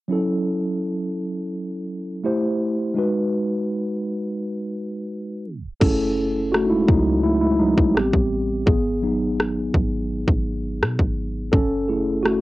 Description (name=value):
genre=contemporary R&B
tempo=84 BPM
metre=4/4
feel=straight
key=F# dorian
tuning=A4 = 440 Hz
part: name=mellow tine electric piano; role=accompaniment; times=0.1-12.4 s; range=F#3 to C5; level=-21 LUFS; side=equal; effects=medium stereo tremolo
part: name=clean 808-style bass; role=bass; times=5.8-12.4 s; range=F#1 to B2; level=-26 LUFS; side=equal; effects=none
part: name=trap drum kit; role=drums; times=5.8-12.4 s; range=crash cymbal, kick drum, rim click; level=-20 LUFS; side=equal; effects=cassette tape
room=light reverb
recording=home recording on cassette, tape stop, nothing above 10.9 kHz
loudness=-19 LUFS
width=side -18 dB against mid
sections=0.1-5.8 A section; 5.8-12.4 B section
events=tape stop 5.5-5.8; tine electric piano solo 5.8-12.4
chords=0.1 F#m7; 2.2 Am7; 3.0 G#m7; 5.8 F#m7; 8.0 Am7; 8.7 G#m7; 11.5 F#m7